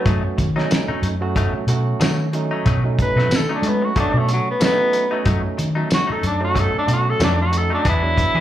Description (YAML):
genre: straight-eighth soul blues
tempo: 92 BPM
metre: 4/4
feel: swing 56% on 16ths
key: B mixolydian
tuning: A4 = 439 Hz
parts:
  - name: breathy tenor saxophone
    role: melody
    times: 0.0-8.4 s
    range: F#3 to B4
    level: -20 LUFS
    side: equal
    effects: slapback echo
  - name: barky tine electric piano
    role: accompaniment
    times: 0.0-8.4 s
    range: F#3 to F#4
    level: -26 LUFS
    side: right 6 dB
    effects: slapback echo
  - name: direct-recorded clean electric guitar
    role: stabs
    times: 0.0-8.4 s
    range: B2 to G#4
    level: -28 LUFS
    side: left 6 dB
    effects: warbly pitch drift, slapback echo
  - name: vintage muted fingered electric bass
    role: bass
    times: 0.1-8.4 s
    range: E2 to G#3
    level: -20 LUFS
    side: equal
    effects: none
  - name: cloth-damped thuddy drum kit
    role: drums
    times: 0.1-8.3 s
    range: hi-hat, kick drum, snare drum, tambourine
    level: -22 LUFS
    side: equal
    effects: none
room: light reverb, small room ambience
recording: live gig heard through the venue's PA, club reverb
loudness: -16 LUFS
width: side -12 dB against mid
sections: 0.0-8.4 A section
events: tenor saxophone solo 0.0-8.4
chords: 0.0 B7; 7.8 E7